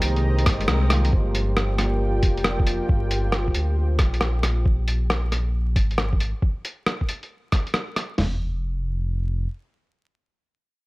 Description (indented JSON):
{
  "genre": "future garage",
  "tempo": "136 BPM",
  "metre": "4/4",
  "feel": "swing 66% on 16ths",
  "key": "unclear",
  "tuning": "A4 = 441 Hz",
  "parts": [
    { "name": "felt-muted upright piano", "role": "accompaniment", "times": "0.0-2.9 s", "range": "Eb3 to Bb4", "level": "-30 LUFS", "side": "right 1 dB", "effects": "vintage 12-bit sampler grit, sidechain pumping, analog delay" },
    { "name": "dark analog pad", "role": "sustained chords", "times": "0.0-4.6 s", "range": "Ab3 to Bb5", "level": "-30 LUFS", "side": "equal", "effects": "chorus, sidechain pumping" },
    { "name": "dark detuned saw bass", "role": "bass", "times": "0.0-9.5 s", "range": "F1 to D2", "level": "-23 LUFS", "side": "equal", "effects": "tube saturation, sidechain pumping" },
    { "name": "lo-fi sampler-style drum kit", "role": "drums", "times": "0.0-8.1 s", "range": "hi-hat, rim click", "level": "-25 LUFS", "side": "equal", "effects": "none" },
    { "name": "flickering grainy texture", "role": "texture", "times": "0.0-4.7 s", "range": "G4 to C5", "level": "-37 LUFS", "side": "left 1 dB", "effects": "built-in reverb" },
    { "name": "lo-fi sampler-style drum kit", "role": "drums", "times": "0.5-8.3 s", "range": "hi-hat, kick drum, snare drum, toms", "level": "-21 LUFS", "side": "equal", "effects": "none" }
  ],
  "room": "digital ambience",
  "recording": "dry, gritty hardware recording, vinyl crackle",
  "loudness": "-20 LUFS",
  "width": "side -22 dB against mid",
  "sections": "0.0-1.1 A section; 1.1-8.2 B section; 8.2-10.9 C section",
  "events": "band accent 0.7",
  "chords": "0.0 Fm11; 1.1 Gm7; 4.7 Absus2; 8.2 N.C."
}